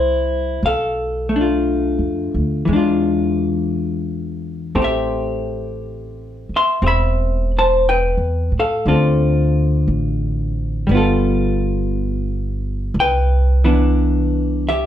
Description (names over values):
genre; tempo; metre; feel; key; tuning
jazz ballad; 59 BPM; 4/4; swing 68% on 8ths; unclear; A4 = 440 Hz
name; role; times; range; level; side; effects
vintage hollow-body jazz guitar; accompaniment; 0.0-14.9 s; D3 to C6; -18 LUFS; left 2 dB; none
upright bass; bass; 0.0-14.9 s; E1 to A2; -20 LUFS; right 1 dB; none
room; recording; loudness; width
wet studio reverb, RT60 0.6 s; heard from further back in the room; -16 LUFS; side -11 dB against mid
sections
0.0-14.9 A section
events
none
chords
0.0 Fmaj7 (rootless); 0.6 Bm7b5; 2.7 E7b9; 4.8 Am9; 8.9 Dm7; 10.9 G9; 12.9 Cmaj9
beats
| 0.62 1.64 2.67 3.71 | 4.75 5.78 6.81 7.84 | 8.86 9.88 10.89 11.92 | 12.94 13.96